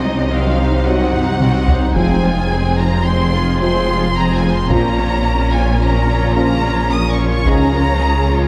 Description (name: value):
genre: cinematic, hybrid orchestral and electronic film score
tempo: 109 BPM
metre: 5/4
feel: straight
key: Bb minor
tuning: A4 = 440 Hz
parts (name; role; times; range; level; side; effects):
- warm symphonic violin section; melody; 0.0-8.5 s; Eb5 to Eb6; -24 LUFS; equal; none
- rich symphonic violin section; second line; 0.0-8.5 s; Db4 to Eb5; -28 LUFS; equal; none
- warm studio viola section; accompaniment; 0.0-8.5 s; Eb3 to Eb4; -26 LUFS; equal; none
- granular cloud pad; sustained chords; 0.0-8.5 s; F3 to C5; -26 LUFS; equal; built-in reverb
- dark symphonic cello section; bass; 0.0-8.5 s; F2 to Db3; -23 LUFS; equal; none
- rich studio double bass section; bass; 0.0-8.5 s; F1 to Db2; -23 LUFS; equal; none
- saturated sub bass; bass; 0.0-8.5 s; F1 to Db2; -23 LUFS; equal; none
- dark French horn section; sustained chords; 0.8-7.6 s; C4 to F4; -28 LUFS; equal; none
- clear trombone section; sustained chords; 0.9-7.7 s; Ab2 to Ab3; -27 LUFS; equal; none
- taiko ensemble; drums; 1.1-8.0 s; none; -22 LUFS; equal; none
room: moderate scoring stage reverb, RT60 1.6 s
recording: none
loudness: -15 LUFS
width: mono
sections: 0.0-8.5 A section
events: drum fill 1.1-2.0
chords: 0.0 Cdim; 2.0 Fm; 4.7 Bbm; 7.5 Db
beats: 0.30 0.85 1.40 | 1.95 2.50 3.05 3.60 4.15 | 4.70 5.25 5.80 6.36 6.91 | 7.46 8.01